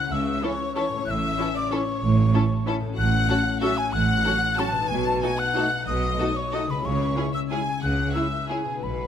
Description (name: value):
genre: classical, orchestral ballroom waltz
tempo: 167-204 BPM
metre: 3/4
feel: rubato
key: unclear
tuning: A4 = 441 Hz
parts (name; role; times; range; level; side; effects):
- bright wooden flute; second line; 0.0-9.1 s; G#5 to F#6; -27 LUFS; left 2 dB; none
- rich studio violin section; second line; 0.0-9.1 s; G#4 to A5; -31 LUFS; left 4 dB; none
- concert harp; arpeggios; 0.0-9.1 s; A2 to F#4; -31 LUFS; left 9 dB; none
- clear studio cello section; bass; 0.1-9.1 s; A2 to C#3; -29 LUFS; right 2 dB; none
- rich symphonic double bass section; bass; 0.1-9.1 s; A1 to C#2; -28 LUFS; right 4 dB; none
- rich studio violin section; melody; 0.4-8.6 s; G#4 to A4; -37 LUFS; left 4 dB; none
- rich studio viola section; accompaniment; 0.4-8.6 s; C#4 to F#4; -32 LUFS; right 1 dB; none
- dark French horn section; sustained chords; 0.4-8.6 s; E3 to E4; -35 LUFS; left 2 dB; none
room: light reverb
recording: close, detailed microphones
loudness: -21 LUFS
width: side -9 dB against mid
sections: 0.0-9.1 A section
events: none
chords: 0.0 A/C#; 1.1 A; 3.0 F#m/A; 4.9 B7; 6.8 C#m